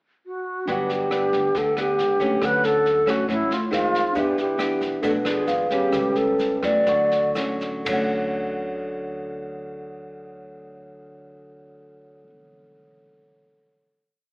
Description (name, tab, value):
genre	bossa nova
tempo	117-138 BPM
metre	4/4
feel	straight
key	D major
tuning	A4 = 440 Hz
part	wooden-headed alto flute	melody	0.3-7.3 s	E4 to D5	-22 LUFS	equal	none
part	mellow tine electric piano	accompaniment	0.7-14.3 s	C#4 to C#6	-27 LUFS	equal	slow stereo tremolo
part	nylon-string guitar	accompaniment	0.7-12.3 s	G2 to G4	-27 LUFS	equal	none
part	upright bass	bass	0.7-12.2 s	G1 to F2	-38 LUFS	equal	none
part	jazz brush drum kit	drums	0.7-8.0 s	kick drum, ride cymbal, rim click, snare drum, toms	-33 LUFS	equal	none
part	tube shaker	percussion	4.2-8.0 s	none	-54 LUFS	left 1 dB	none
room	moderate scoring stage reverb, RT60 1.8 s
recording	recorded in a church or concert hall, AM radio sound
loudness	-20 LUFS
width	side -30 dB against mid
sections	0.0-0.7 pickup bar; 0.7-7.9 A section; 7.9-12.0 final chord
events	slowing down 4.2-7.9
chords	0.0 N.C.; 0.7 Gmaj7; 2.4 Dmaj7; 3.7 Fm7; 4.2 Em7; 5.0 Bm7; 5.5 G#dim7; 5.9 A9/C#; 6.9 Dmaj7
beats	0.25 | 0.68 1.12 1.55 1.99 | 2.42 2.85 3.29 3.72 | 4.16 4.59 5.03 5.48 | 5.93 6.40 6.87 7.36 | 7.87 8.38 8.89 9.41 | 9.92 10.43 10.95 11.46